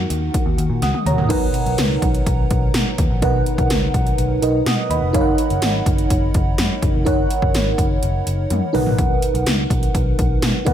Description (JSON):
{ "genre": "1980s-style pop", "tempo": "125 BPM", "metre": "4/4", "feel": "straight", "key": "B major", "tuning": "A4 = 440 Hz", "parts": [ { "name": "FM electric piano with soft pad layer", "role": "accompaniment", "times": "0.0-10.7 s", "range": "B2 to D#6", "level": "-21 LUFS", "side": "right 1 dB", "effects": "chorus" }, { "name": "vintage muted picked electric bass", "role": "bass", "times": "0.0-10.7 s", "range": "E#1 to B2", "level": "-21 LUFS", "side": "equal", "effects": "none" }, { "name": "80s electronic pad drums", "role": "drums", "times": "0.1-10.7 s", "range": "crash cymbal, hi-hat, kick drum, snare drum, tambourine, toms", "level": "-20 LUFS", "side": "equal", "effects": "gated reverb on snare and toms, overdrive" } ], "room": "light reverb", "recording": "none", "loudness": "-16 LUFS", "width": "side -10 dB against mid", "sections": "0.0-1.3 A section; 1.3-10.7 B section", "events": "drum fill 0.8-1.3, 8.5-9.0", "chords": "0.0 D#m; 1.3 Bmaj7; 5.1 F#6; 8.7 Bmaj7" }